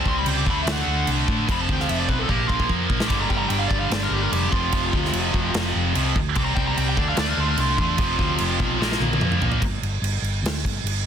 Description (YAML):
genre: hard rock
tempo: 147 BPM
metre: 4/4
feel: straight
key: unclear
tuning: A4 = 440 Hz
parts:
  - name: nasal lead guitar with a parked wah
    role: melody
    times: 0.0-9.0 s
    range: F4 to D6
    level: -28 LUFS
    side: equal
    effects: overdrive, tape echo
  - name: scooped high-gain guitar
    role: riff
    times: 0.0-9.6 s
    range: F2 to D4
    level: -24 LUFS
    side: equal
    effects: distortion
  - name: hollow-body short-scale fingered electric bass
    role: bass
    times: 0.0-11.1 s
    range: F1 to A2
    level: -26 LUFS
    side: equal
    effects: none
  - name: big rock drum kit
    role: drums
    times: 0.1-11.0 s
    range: crash cymbal, kick drum, snare drum, toms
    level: -25 LUFS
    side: equal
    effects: none
room: light reverb, studio reverb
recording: dense, heavily limited modern master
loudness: -20 LUFS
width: side -8 dB against mid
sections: 0.0-9.6 A section; 9.6-11.1 B section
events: lead electric guitar solo 0.0-9.6; drum fill 2.3-3.1, 8.8-9.6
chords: 0.5 D; 1.5 F5; 2.3 Bb5; 3.1 G5; 4.5 F5; 6.4 C5; 7.0 D5; 8.0 F5; 8.8 Bb5; 9.6 G5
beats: 0.25 0.66 1.06 | 1.47 1.88 2.28 2.69 | 3.10 3.50 3.91 4.32 | 4.72 5.13 5.54 5.95 | 6.35 6.76 7.17 7.58 | 7.98 8.39 8.80 9.21 | 9.62 10.03 10.44 10.85